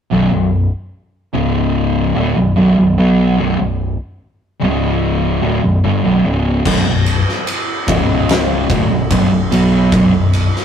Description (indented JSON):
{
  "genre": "stoner and doom metal",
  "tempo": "73 BPM",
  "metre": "4/4",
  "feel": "straight",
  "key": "unclear",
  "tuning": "A4 = 440 Hz",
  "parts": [
    { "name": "fuzz guitar", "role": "riff", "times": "0.1-10.5 s", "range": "B1 to B3", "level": "-13 LUFS", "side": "equal", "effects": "distortion" },
    { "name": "growling fingered electric bass", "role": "bass", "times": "0.1-10.5 s", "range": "B0 to B1", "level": "-21 LUFS", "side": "equal", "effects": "overdrive" },
    { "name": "oversized low-tuned drum kit", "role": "drums", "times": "6.7-10.6 s", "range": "crash cymbal, kick drum, ride cymbal, snare drum", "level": "-17 LUFS", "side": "left 1 dB", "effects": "none" }
  ],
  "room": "moderate stone room reverb, RT60 1.1 s",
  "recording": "rough rehearsal-room recording, tube saturation",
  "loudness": "-12 LUFS",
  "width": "side -8 dB against mid",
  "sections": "0.1-6.7 A section; 6.7-10.6 B section",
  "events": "none",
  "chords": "0.1 B5; 1.3 C#5; 2.2 Bm; 4.6 C#5; 5.4 Bm; 6.7 B5; 7.9 C#5; 8.7 Bm"
}